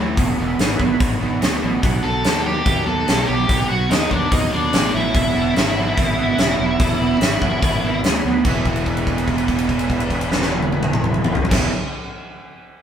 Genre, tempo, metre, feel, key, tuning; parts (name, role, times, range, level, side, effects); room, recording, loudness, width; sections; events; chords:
blues rock power trio and southern rock; 145 BPM; 4/4; straight; E major; A4 = 440 Hz
overdriven tonewheel organ; sustained chords; 0.0-11.7 s; D#3 to F#5; -31 LUFS; right 2 dB; slow rotary speaker, chorus vibrato
overdriven electric guitar; riff; 0.0-11.7 s; E2 to E4; -22 LUFS; right 2 dB
fuzz fingered electric bass; bass; 0.0-11.7 s; E1 to D#2; -25 LUFS; equal; overdrive
huge arena drum kit; drums; 0.2-11.6 s; crash cymbal, hi-hat, kick drum, snare drum, toms; -20 LUFS; equal
octave-fuzz lead guitar; melody; 2.0-8.0 s; D4 to A4; -21 LUFS; equal; distortion
moderate studio reverb, RT60 0.7 s; band playing live in one room; -16 LUFS; side -8 dB against mid
0.0-8.5 A section; 8.5-11.8 B section
held note 8.5-11.5
0.2 E; 1.8 B; 5.1 E